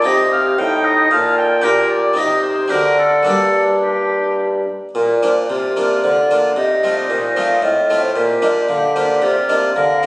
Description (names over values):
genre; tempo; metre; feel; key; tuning
classical, baroque-style sonata movement with continuo; 112 BPM; 3/4; straight; G minor, Bb major from 4.9 s; A4 = 440 Hz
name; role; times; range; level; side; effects
warm oboe; melody; 0.0-10.1 s; Eb4 to G5; -18 LUFS; equal; none
baroque flute; second line; 0.0-10.1 s; D4 to F5; -20 LUFS; equal; none
harpsichord; accompaniment; 0.0-10.1 s; G2 to G4; -19 LUFS; equal; none
warm bassoon; bass; 0.0-10.1 s; G2 to D3; -18 LUFS; equal; none
room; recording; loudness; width
wet recital hall reverb, RT60 1.6 s; recorded on a phone in the room, studio reverb, compression; -13 LUFS; side -21 dB against mid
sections
0.0-4.9 A section; 4.9-10.1 A section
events
none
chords
0.1 Cm; 1.6 Gm/Bb; 2.2 Cm; 2.7 D7; 3.3 Gm; 4.9 Bb; 6.6 F7; 8.2 Bb